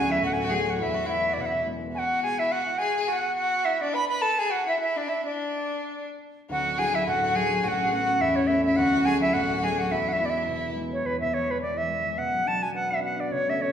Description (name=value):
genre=celtic folk, Celtic reel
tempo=211 BPM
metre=4/4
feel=swing 56% on 8ths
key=E mixolydian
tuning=A4 = 440 Hz
part: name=bright reedy wooden flute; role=melody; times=0.0-13.7 s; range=B4 to B5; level=-25 LUFS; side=right 1 dB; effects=none
part: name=clear fiddle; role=second line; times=0.0-10.8 s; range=C#4 to B4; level=-30 LUFS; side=left 3 dB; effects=none
part: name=concert harp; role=accompaniment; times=0.0-13.7 s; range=D1 to B4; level=-28 LUFS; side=left 1 dB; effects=none
room=wet recital hall reverb, RT60 1.4 s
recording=recorded in a church or concert hall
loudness=-23 LUFS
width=side -8 dB against mid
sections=0.0-1.9 A section; 1.9-11.0 A section; 11.0-13.7 B section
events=none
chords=0.0 D; 0.8 E; 1.9 N.C.; 6.5 Dadd9; 7.6 Aadd9; 8.8 D; 9.9 E; 12.2 Bm